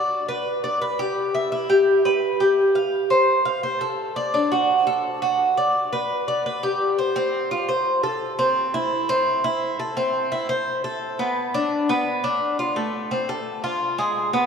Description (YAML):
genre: latin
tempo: 170 BPM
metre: 4/4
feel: straight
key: unclear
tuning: A4 = 439 Hz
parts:
  - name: Cuban tres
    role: solo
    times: 0.0-14.5 s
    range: Ab3 to F5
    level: -20 LUFS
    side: equal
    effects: none
room: wet cathedral reverb, RT60 5.2 s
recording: in a vast, echoing space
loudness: -20 LUFS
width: side -6 dB against mid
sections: 0.0-7.2 A section; 7.2-14.5 B section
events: none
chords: none